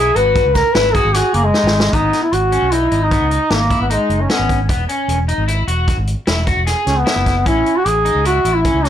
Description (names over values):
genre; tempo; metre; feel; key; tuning
progressive instrumental, band music in an uneven meter; 152 BPM; 7/4; straight; G# minor; A4 = 439 Hz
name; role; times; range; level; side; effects
warm duduk; melody; 0.0-8.9 s; G#3 to B4; -15 LUFS; equal; none
electric guitar at the edge of break-up; arpeggios; 0.0-8.9 s; B3 to G#4; -21 LUFS; left 1 dB; lush chorus
fingered electric bass; bass; 0.0-8.9 s; E1 to C#2; -19 LUFS; equal; none
vintage drum kit; drums; 0.2-8.9 s; hi-hat, kick drum, snare drum; -20 LUFS; equal; none
egg shaker; percussion; 0.6-1.2 s; none; -41 LUFS; right 5 dB; none
room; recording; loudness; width
moderate studio reverb, RT60 0.6 s; blown-out, overdriven recording, overdrive; -13 LUFS; side -10 dB against mid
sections
0.0-1.9 A section; 1.9-8.9 B section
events
duduk solo 0.0-1.9; drum fill 1.5-1.9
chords
0.0 G#m; 4.7 E; 7.5 A